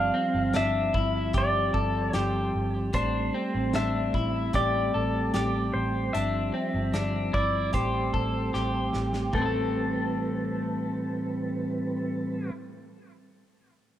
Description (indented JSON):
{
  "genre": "dream pop",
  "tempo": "75 BPM",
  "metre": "4/4",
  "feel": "straight",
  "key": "A minor",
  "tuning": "A4 = 441 Hz",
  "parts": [
    { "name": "pedal steel guitar", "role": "melody", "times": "0.0-12.5 s", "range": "A4 to F5", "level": "-30 LUFS", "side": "left 1 dB", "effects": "tape echo" },
    { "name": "mellow tonewheel organ", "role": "sustained chords", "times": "0.0-12.5 s", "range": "A2 to B4", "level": "-31 LUFS", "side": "right 1 dB", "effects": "chorus vibrato, slow rotary speaker" },
    { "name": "electric guitar at the edge of break-up", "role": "arpeggios", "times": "0.0-12.6 s", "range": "A3 to A4", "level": "-31 LUFS", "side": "left 1 dB", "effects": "wide subtle chorus, tape echo" },
    { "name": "vintage muted picked electric bass", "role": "bass", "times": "0.0-12.5 s", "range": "G1 to A1", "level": "-31 LUFS", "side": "equal", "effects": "none" },
    { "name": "loose indie drum kit", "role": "drums", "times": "0.5-9.5 s", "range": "hi-hat, kick drum, snare drum, toms", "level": "-33 LUFS", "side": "equal", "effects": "none" }
  ],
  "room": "moderate plate reverb, RT60 2.3 s",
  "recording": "rough home demo mix",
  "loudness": "-25 LUFS",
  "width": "side -11 dB against mid",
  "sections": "0.0-9.3 A section; 9.3-12.5 B section",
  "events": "drum fill 8.5-9.3",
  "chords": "0.0 G7sus4; 2.9 Am7; 6.1 G7sus4; 7.7 Am7"
}